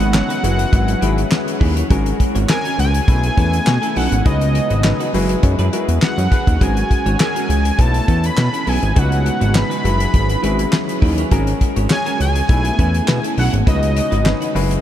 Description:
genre	early-eighties boogie funk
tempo	102 BPM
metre	4/4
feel	straight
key	unclear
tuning	A4 = 440 Hz
part	fat analog lead	melody	0.0-14.5 s	D#5 to B5	-23 LUFS	equal	ping-pong delay
part	chorused pulse-width pad	sustained chords	0.0-14.8 s	C#3 to B4	-25 LUFS	right 1 dB	none
part	semi-hollow electric guitar	riff	0.0-14.7 s	C#4 to C#5	-28 LUFS	right 2 dB	analog chorus
part	fat analog bass	bass	0.0-14.8 s	F#1 to B2	-17 LUFS	equal	none
part	damped 70s drum kit	drums	0.0-14.8 s	handclaps, hi-hat, kick drum, snare drum	-19 LUFS	equal	none
part	clear grand piano	accompaniment	0.1-14.8 s	F#3 to C#5	-25 LUFS	left 4 dB	none
room	light reverb, small room reverb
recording	none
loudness	-14 LUFS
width	side -11 dB against mid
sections	0.0-14.8 A section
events	none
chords	0.4 F#9sus4; 1.9 G#9sus4; 3.1 B9sus4; 4.3 C#9sus4; 5.1 F#9sus4; 6.6 G#9sus4; 7.8 B9sus4; 9.0 C#9sus4; 9.8 F#9sus4; 11.3 G#9sus4; 12.5 B9sus4; 13.7 C#9sus4

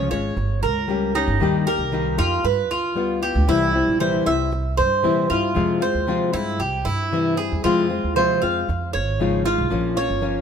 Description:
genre	latin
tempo	116 BPM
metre	4/4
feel	straight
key	F minor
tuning	A4 = 439 Hz
part	nylon-string guitar	accompaniment	0.0-10.4 s	C3 to G4	-23 LUFS	left 5 dB	none
part	Cuban tres	arpeggios	0.0-10.4 s	Eb4 to F5	-22 LUFS	right 4 dB	none
part	upright bass	bass	0.0-10.4 s	G1 to Bb2	-25 LUFS	right 1 dB	none
room	light reverb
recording	minimal, uncompressed stereo recording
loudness	-18 LUFS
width	side -7 dB against mid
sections	0.0-10.4 A section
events	none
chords	0.4 Gdim; 1.4 Eb; 2.4 G7; 3.5 C; 5.6 Fm; 6.6 C; 7.6 Fm; 8.7 Dbadd9; 9.7 Bbm

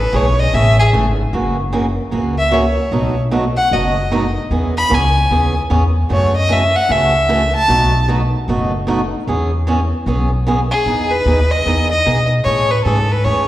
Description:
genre	country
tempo	151 BPM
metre	4/4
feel	swing 65% on 8ths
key	E major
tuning	A4 = 439 Hz
part	clear fiddle	melody	0.0-8.0, 10.7-13.5 s	G#4 to B5	-16 LUFS	equal	slapback echo
part	upright bass	bass	0.0-13.5 s	F#1 to B2	-17 LUFS	equal	none
part	picked swing-style acoustic guitar	accompaniment	0.1-13.5 s	B2 to G#4	-19 LUFS	right 2 dB	slapback echo
room	moderate lush hall reverb, RT60 3.0 s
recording	live gig heard through the venue's PA, recital hall reverb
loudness	-13 LUFS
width	side -14 dB against mid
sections	0.0-10.9 A section; 10.9-13.5 B section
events	fiddle solo 0.0-10.9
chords	0.0 Amaj7; 1.3 F#7; 2.9 B7; 4.5 E6; 6.1 F#m7; 7.7 B7; 9.3 E6; 10.9 Emaj7; 12.5 Amaj7

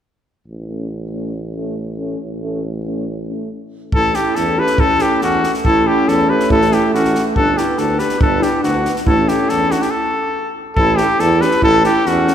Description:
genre	balkan folk, Balkan brass band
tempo	140 BPM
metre	2/4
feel	straight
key	A mixolydian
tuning	A4 = 442 Hz
part	warm tuba	bass	0.5-12.3 s	G1 to E2	-22 LUFS	right 1 dB	none
part	mellow euphonium	accompaniment	0.7-12.3 s	A3 to B3	-25 LUFS	right 4 dB	none
part	warm euphonium	accompaniment	0.7-12.3 s	C#4 to D4	-24 LUFS	left 4 dB	none
part	warm cornet	melody	3.9-12.3 s	F#4 to B4	-16 LUFS	left 2 dB	none
part	dark clarinet	second line	3.9-12.3 s	C#4 to G4	-20 LUFS	right 3 dB	none
part	compact cocktail drum kit	percussion	3.9-12.3 s	kick drum, snare drum	-22 LUFS	equal	none
room	wet church reverb, RT60 2.6 s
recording	recorded in a church or concert hall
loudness	-14 LUFS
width	side -9 dB against mid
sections	0.5-3.9 A section; 3.9-10.8 B section; 10.8-12.3 B section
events	stop 3.5-3.9, 9.9-10.8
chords	0.5 A; 7.4 G; 9.1 A

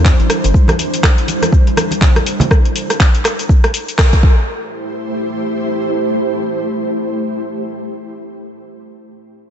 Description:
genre	afro house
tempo	122 BPM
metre	4/4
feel	swing 59% on 16ths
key	A minor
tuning	A4 = 441 Hz
part	ethereal airy pad	sustained chords	0.0-7.4 s	G3 to C5	-20 LUFS	equal	ensemble chorus, built-in reverb, tremolo, sidechain pumping
part	round analog bass	bass	0.0-0.5 s	G1 to E2	-13 LUFS	equal	sidechain pumping
part	deep house drum kit	drums	0.1-4.2 s	cabasa, handclaps, hi-hat, rim click	-18 LUFS	equal	overdrive
part	electronic kick drum	drums	0.1-4.3 s	none	-10 LUFS	equal	overdrive
part	congas	percussion	0.2-2.5 s	none	-21 LUFS	right 2 dB	none
room	light reverb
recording	nothing above 8.0 kHz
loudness	-12 LUFS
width	side -9 dB against mid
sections	0.0-4.5 A section; 4.5-8.4 B section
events	drop 0.0-4.5; band accent 4.0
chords	0.0 Cadd9; 4.2 Am7

